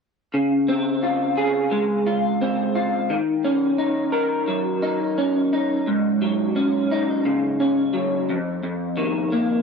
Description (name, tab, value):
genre	indie pop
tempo	87 BPM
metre	4/4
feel	swing 55% on 16ths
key	Db major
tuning	A4 = 442 Hz
part	electric guitar through a small old amp	solo	0.3-9.6 s	F2 to Bb4	-19 LUFS	equal	ensemble chorus, warbly pitch drift
room	light reverb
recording	dry, close 1970s-style studio recording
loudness	-19 LUFS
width	side -5 dB against mid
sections	0.3-9.6 A section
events	none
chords	0.3 Dbmaj7; 3.1 Ebm7; 5.9 Ab7sus4; 8.3 F7sus4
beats	| 0.34 1.03 1.72 2.41 | 3.10 3.79 4.48 5.17 | 5.86 6.55 7.25 7.93 | 8.62 9.32